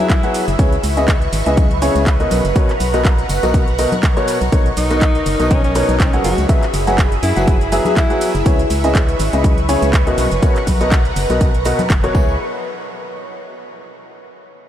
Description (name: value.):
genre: piano house.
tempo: 122 BPM.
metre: 4/4.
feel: swing 55% on 16ths.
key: unclear.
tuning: A4 = 440 Hz.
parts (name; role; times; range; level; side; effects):
bright alto saxophone; melody; 0.0-0.3, 4.8-8.5 s; C#4 to G#4; -24 LUFS; left 1 dB; ping-pong delay.
analog string pad; sustained chords; 0.0-12.4 s; G#4 to C#6; -23 LUFS; right 1 dB; ensemble chorus, phaser, sidechain pumping.
clear upright piano; riff; 0.0-12.3 s; B2 to F#5; -20 LUFS; left 1 dB; sidechain pumping, ping-pong delay.
tambourine and congas; percussion; 0.0-12.4 s; none; -28 LUFS; left 2 dB; none.
electronic kick drum; drums; 0.1-12.3 s; none; -15 LUFS; equal; none.
house drum kit; drums; 0.1-12.1 s; handclaps, hi-hat, ride cymbal, shaker; -25 LUFS; right 1 dB; none.
organ-like FM bass; bass; 0.5-12.4 s; F#1 to F#2; -20 LUFS; equal; sidechain pumping.
room: moderate huge ambient reverb, RT60 7.2 s.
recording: dreamy mix soaked in reverb.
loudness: -13 LUFS.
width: side -11 dB against mid.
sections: 0.0-12.4 A section; 12.4-14.4 B section.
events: drop 0.0-12.4.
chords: 0.0 F#9sus4; 0.6 C#m7; 2.3 F#add11; 4.5 Bmaj9; 6.2 F#9sus4; 8.5 C#m7; 10.2 F#add11; 12.1 C#m7; 12.4 N.C..